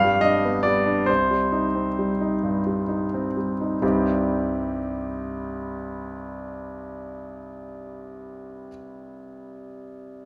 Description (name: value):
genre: classical, romantic character piece for solo piano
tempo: 42-52 BPM (dotted quarters)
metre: 6/8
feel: rubato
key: C minor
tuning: A4 = 440 Hz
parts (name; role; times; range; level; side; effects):
- warm concert grand piano; solo; 0.0-10.3 s; C2 to F5; -26 LUFS; equal; none
room: wet recital hall reverb, RT60 1.6 s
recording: none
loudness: -24 LUFS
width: mono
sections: 0.0-3.8 A section; 3.8-8.6 B section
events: slowing down 0.0-3.8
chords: 0.0 G; 1.1 Cm